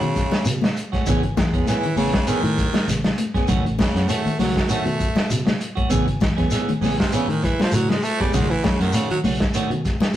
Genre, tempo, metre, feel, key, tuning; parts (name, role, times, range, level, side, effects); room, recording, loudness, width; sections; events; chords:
afrobeat; 99 BPM; 4/4; swing 54% on 16ths; B mixolydian; A4 = 440 Hz
raspy baritone saxophone; melody; 0.0-9.2 s; G#2 to A3; -25 LUFS; right 1 dB
semi-hollow electric guitar; arpeggios; 0.0-9.9 s; C#3 to F#3; -28 LUFS; left 1 dB
clean electric guitar; stabs; 0.0-9.9 s; D#3 to G#4; -25 LUFS; right 2 dB
fingered electric bass; bass; 0.0-10.2 s; G#1 to B2; -26 LUFS; equal
vintage drum kit; drums; 0.0-10.1 s; hi-hat, kick drum, snare drum; -22 LUFS; equal
shekere; percussion; 0.2-10.2 s; -29 LUFS; left 1 dB
congas; percussion; 0.3-10.2 s; -27 LUFS; left 3 dB
moderate stone room reverb, RT60 0.9 s; rough rehearsal-room recording, tube saturation; -18 LUFS; side -12 dB against mid
0.0-10.2 A section
baritone saxophone solo 0.0-10.2
0.0 B9; 1.1 Amaj9; 3.5 B9; 5.9 Amaj9; 8.3 B9